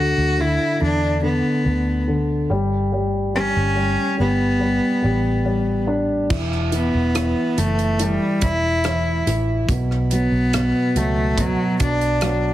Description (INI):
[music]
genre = pop ballad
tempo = 71 BPM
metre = 4/4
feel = straight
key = unclear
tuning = A4 = 441 Hz
[part]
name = clear cello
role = melody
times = 0.0-12.5 s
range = F#3 to F#4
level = -21 LUFS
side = equal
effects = ping-pong delay
[part]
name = dark grand piano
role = accompaniment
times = 0.0-12.5 s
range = B2 to D4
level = -23 LUFS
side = left 1 dB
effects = none
[part]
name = vintage muted fingered electric bass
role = bass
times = 0.0-12.5 s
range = E1 to E2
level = -23 LUFS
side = equal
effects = none
[part]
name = modern studio drum kit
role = drums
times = 6.3-12.4 s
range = crash cymbal, hi-hat, kick drum, rim click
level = -25 LUFS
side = right 1 dB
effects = none
[sound]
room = studio ambience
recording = heavily compressed radio sound, multiband compression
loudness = -17 LUFS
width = side -14 dB against mid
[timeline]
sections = 0.0-6.3 A section; 6.3-12.5 B section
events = none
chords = 0.0 Bm/D; 2.5 G; 6.3 E5; 9.7 Bm